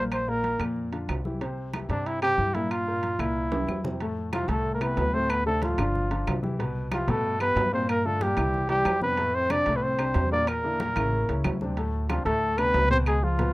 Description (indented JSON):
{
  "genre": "Afro-Cuban jazz",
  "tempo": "185 BPM",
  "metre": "4/4",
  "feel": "straight",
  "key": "C major",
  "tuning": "A4 = 440 Hz",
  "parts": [
    { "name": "breathy trumpet", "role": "melody", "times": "0.0-13.5 s", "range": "D4 to D5", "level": "-26 LUFS", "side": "equal", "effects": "none" },
    { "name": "warm baby grand piano", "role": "accompaniment", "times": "0.0-13.5 s", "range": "A2 to C5", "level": "-31 LUFS", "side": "left 1 dB", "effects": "none" },
    { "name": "upright bass", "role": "bass", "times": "0.0-13.5 s", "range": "G1 to G2", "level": "-30 LUFS", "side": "equal", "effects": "none" },
    { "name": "claves", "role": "percussion", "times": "0.1-13.2 s", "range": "none", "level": "-38 LUFS", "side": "left 3 dB", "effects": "none" },
    { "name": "congas", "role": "percussion", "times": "0.1-13.5 s", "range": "none", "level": "-37 LUFS", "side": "left 2 dB", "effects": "none" },
    { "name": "timbales", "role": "percussion", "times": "0.1-13.5 s", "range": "none", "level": "-37 LUFS", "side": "right 5 dB", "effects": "none" },
    { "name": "mellow trombone", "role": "second line", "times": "4.3-13.5 s", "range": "F3 to D4", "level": "-34 LUFS", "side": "left 1 dB", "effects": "none" }
  ],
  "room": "light reverb",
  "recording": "rough home demo mix",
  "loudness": "-24 LUFS",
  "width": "side -20 dB against mid",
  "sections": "0.0-4.0 A section; 4.0-13.5 B section",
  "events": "drum fill 3.5-4.0",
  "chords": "0.1 Bbadd9; 1.4 C; 2.7 Gm7; 3.4 C7; 4.0 Fmaj7; 5.3 Dm7; 5.9 G5; 6.6 Cmaj7; 7.9 Gm7; 8.5 Cadd9; 9.2 F6; 10.5 Bbmaj7#11; 11.1 A; 11.8 D5"
}